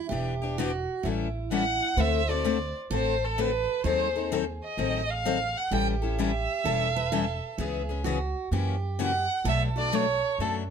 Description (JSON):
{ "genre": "acoustic string swing (jazz manouche)", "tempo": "128 BPM", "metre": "4/4", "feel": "swing 65% on 8ths", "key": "A mixolydian", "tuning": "A4 = 445 Hz", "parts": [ { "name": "picked steel-string acoustic guitar", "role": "second line", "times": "0.0-10.7 s", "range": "E4 to C5", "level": "-35 LUFS", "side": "right 6 dB", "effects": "none" }, { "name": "picked steel-string acoustic guitar", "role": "accompaniment", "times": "0.1-10.6 s", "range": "B2 to A4", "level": "-29 LUFS", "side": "left 9 dB", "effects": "none" }, { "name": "upright bass", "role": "bass", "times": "0.1-10.7 s", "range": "E1 to F#2", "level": "-31 LUFS", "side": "right 1 dB", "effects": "none" }, { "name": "warm violin", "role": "melody", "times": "1.5-10.5 s", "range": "A4 to G5", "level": "-28 LUFS", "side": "right 3 dB", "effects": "plate reverb" } ], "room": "light reverb", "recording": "none", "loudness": "-25 LUFS", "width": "side -7 dB against mid", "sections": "0.0-10.7 A section", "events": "none", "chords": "0.1 Em7; 1.0 A7; 2.0 D7; 3.8 D#dim7; 5.7 A7; 7.6 C#m7; 8.5 F#7b9; 9.5 Bm7" }